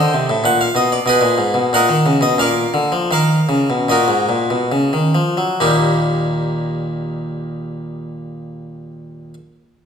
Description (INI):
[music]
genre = classical, baroque-style suite movement for harpsichord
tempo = 67-98 BPM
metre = 3/4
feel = rubato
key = unclear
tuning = A4 = 440 Hz
[part]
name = harpsichord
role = solo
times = 0.0-9.3 s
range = Eb2 to G5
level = -15 LUFS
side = equal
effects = none
[sound]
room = wet recital hall reverb, RT60 1.5 s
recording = minimal, uncompressed stereo recording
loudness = -14 LUFS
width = side -7 dB against mid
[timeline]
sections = 0.0-5.6 A section; 5.6-9.9 B section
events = slowing down 0.1-5.6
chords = 0.5 Bbadd11; 1.1 Abm; 1.7 Ebm/Bb; 2.4 Bb; 3.1 Ebm; 5.6 Eb